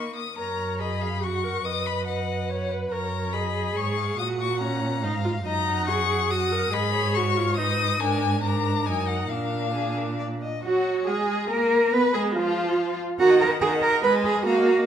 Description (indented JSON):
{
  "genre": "quick classical-period movement for string quartet",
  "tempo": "141 BPM",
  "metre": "3/4",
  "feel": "straight",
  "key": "F# major, Eb minor from 5.5 s",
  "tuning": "A4 = 440 Hz",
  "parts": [
    { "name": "rich violin", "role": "melody", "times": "0.0-14.9 s", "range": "F4 to Eb6", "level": "-29 LUFS", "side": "left 9 dB", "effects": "none" },
    { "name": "rich viola", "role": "accompaniment", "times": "0.0-14.8 s", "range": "Eb3 to C#5", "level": "-28 LUFS", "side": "right 2 dB", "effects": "none" },
    { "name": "rich violin", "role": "second line", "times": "0.4-14.9 s", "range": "F4 to Gb5", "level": "-33 LUFS", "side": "left 4 dB", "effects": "none" },
    { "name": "rich cello", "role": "bass", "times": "0.4-14.9 s", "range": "Gb2 to Cb5", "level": "-25 LUFS", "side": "right 3 dB", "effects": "none" }
  ],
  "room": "wet recital hall reverb, RT60 1.4 s",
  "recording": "none",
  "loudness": "-22 LUFS",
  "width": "side -9 dB against mid",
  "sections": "0.4-10.6 A section; 10.6-14.9 B section",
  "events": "none",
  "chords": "0.4 F#; 1.6 B/F#; 2.9 F#; 4.2 F#/A#; 5.5 Ebm/Gb; 6.7 Abm; 8.0 Bb7/Ab; 8.9 Ebm/Gb; 9.3 Bb; 10.6 Gbadd9; 11.9 Fdim; 13.2 Ebm; 14.0 Abm"
}